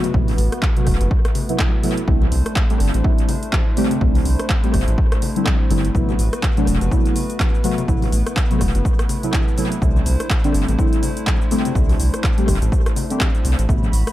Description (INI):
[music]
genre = deep house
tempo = 124 BPM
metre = 4/4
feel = swing 58% on 16ths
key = unclear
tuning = A4 = 435 Hz
[part]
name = hollow soft pad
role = sustained chords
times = 0.0-14.1 s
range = A3 to B5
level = -28 LUFS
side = equal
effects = chorus, sidechain pumping
[part]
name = deep mellow chord stab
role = stabs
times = 0.0-13.8 s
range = C3 to G4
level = -23 LUFS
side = left 1 dB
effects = chorus, sidechain pumping, analog delay
[part]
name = punchy analog drum machine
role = drums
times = 0.0-14.1 s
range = handclaps, hi-hat, rim click, shaker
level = -27 LUFS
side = equal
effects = overdrive, small room ambience, analog delay
[part]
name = congas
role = percussion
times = 0.0-13.9 s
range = none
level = -32 LUFS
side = left 3 dB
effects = none
[part]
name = round analog bass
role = bass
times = 0.1-14.0 s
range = E1 to C2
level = -19 LUFS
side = equal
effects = tube saturation, sidechain pumping
[part]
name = electronic kick drum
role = drums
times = 0.1-13.8 s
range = none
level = -19 LUFS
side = equal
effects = small room ambience
[sound]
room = light reverb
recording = echo-heavy mix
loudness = -16 LUFS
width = side -14 dB against mid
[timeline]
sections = 0.0-14.1 A section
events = none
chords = 0.0 Am69; 2.1 C69; 5.9 Am69; 9.8 C69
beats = | 0.14 0.62 1.11 1.59 | 2.08 2.56 3.04 3.53 | 4.01 4.50 4.98 5.46 | 5.95 6.43 6.92 7.40 | 7.88 8.37 8.85 9.33 | 9.82 10.30 10.79 11.27 | 11.75 12.24 12.72 13.21 | 13.69